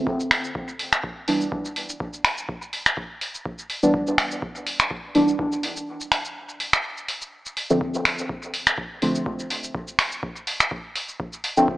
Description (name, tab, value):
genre	dub techno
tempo	124 BPM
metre	4/4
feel	swing 55% on 16ths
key	D dorian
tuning	A4 = 440 Hz
part	electronic kick drum	drums	0.1-11.8 s	none	-33 LUFS	equal	none
part	booming analog drum machine	drums	0.2-11.7 s	finger snaps, hi-hat, shaker	-22 LUFS	equal	none
part	deep mellow chord stab	stabs	1.3-11.8 s	D3 to D4	-22 LUFS	equal	chorus, phaser, sidechain pumping, dub echo
room	moderate lush hall reverb, RT60 2.1 s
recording	AM radio sound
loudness	-22 LUFS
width	side -16 dB against mid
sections	0.0-7.8 A section; 7.8-11.8 A section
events	break 5.9-7.8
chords	0.1 Em7; 7.8 Dm7